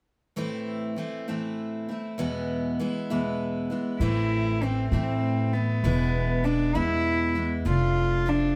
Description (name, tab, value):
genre	acoustic folk duo or small band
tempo	66 BPM (dotted quarters)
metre	6/8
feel	straight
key	A harmonic minor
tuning	A4 = 441 Hz
part	picked steel-string acoustic guitar	accompaniment	0.4-8.6 s	E2 to F4	-32 LUFS	equal	none
part	warm cello	melody	4.0-8.6 s	B3 to F4	-29 LUFS	equal	none
part	upright bass	bass	4.0-8.5 s	E1 to A2	-28 LUFS	equal	none
room	moderate studio reverb, RT60 0.7 s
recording	band playing live in one room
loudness	-27 LUFS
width	mono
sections	0.4-4.0 A section; 4.0-8.6 B section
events	none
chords	0.4 Am; 2.2 E; 4.0 Am; 5.8 E; 7.7 Dm/F